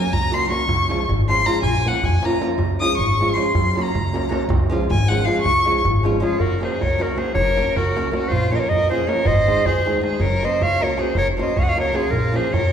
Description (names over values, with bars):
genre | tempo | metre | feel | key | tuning
balkan folk, Balkan wedding band | 314 BPM (eighths) | 5/8 | straight | unclear | A4 = 436 Hz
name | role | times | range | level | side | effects
rich violin | second line | 0.0-12.7 s | F4 to Eb6 | -23 LUFS | left 2 dB | none
nylon-string guitar | accompaniment | 0.0-12.5 s | Eb3 to Gb4 | -24 LUFS | equal | none
upright bass | bass | 0.1-12.7 s | Gb1 to Gb2 | -23 LUFS | equal | none
darbuka | percussion | 0.1-12.7 s | none | -24 LUFS | right 2 dB | none
clear clarinet | melody | 6.2-12.7 s | Ab4 to Gb5 | -21 LUFS | equal | none
room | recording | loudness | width
wet recital hall reverb, RT60 1.6 s | recorded in a church or concert hall | -17 LUFS | side -8 dB against mid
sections
0.0-6.4 A section; 6.4-12.7 B section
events
violin solo 0.0-6.4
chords
0.0 Gb; 0.7 Db; 1.6 Bbm; 2.6 Db; 3.5 Gb; 4.5 Db; 6.4 Gb; 8.3 Bbm; 9.3 Ab; 10.2 Gb; 12.1 Bbm